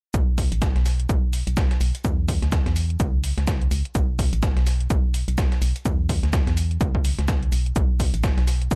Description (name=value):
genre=piano house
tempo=126 BPM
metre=4/4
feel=swing 59% on 16ths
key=unclear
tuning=A4 = 439 Hz
part: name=organ-like FM bass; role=bass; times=0.1-8.8 s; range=A1 to E2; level=-26 LUFS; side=equal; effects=sidechain pumping
part: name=breakbeat sampler-style drum kit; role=drums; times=0.1-8.8 s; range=hi-hat, shaker, snare drum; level=-38 LUFS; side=equal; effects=sidechain pumping on perc, high-pass filter on perc, sidechain pumping on hats, high-pass filter on hats, high-pass filter on snare
part: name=electronic hi-hat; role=drums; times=0.1-8.8 s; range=none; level=-37 LUFS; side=equal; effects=none
part: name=electronic kick drum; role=drums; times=0.1-8.8 s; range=none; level=-25 LUFS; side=equal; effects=none
room=little or no reverb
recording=none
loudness=-22 LUFS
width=mono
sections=0.1-8.8 A section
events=none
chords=none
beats=| 0.14 0.62 1.09 1.57 | 2.05 2.52 3.00 3.48 | 3.95 4.43 4.90 5.38 | 5.86 6.33 6.81 7.28 | 7.76 8.24 8.71